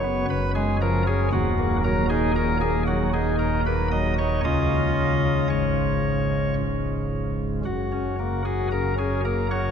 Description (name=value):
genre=classical, chorale-style piece for pipe organ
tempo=57 BPM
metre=3/4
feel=straight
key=unclear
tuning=A4 = 440 Hz
part: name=chamber organ, cornet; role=solo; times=0.0-9.7 s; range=C#1 to D#5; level=-21 LUFS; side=equal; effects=none
room=wet cathedral reverb, RT60 6.9 s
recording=recorded in a church or concert hall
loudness=-21 LUFS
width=side -7 dB against mid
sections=0.0-9.7 A section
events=none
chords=0.3 C#/F#; 1.3 D#m; 4.4 C#; 7.7 F#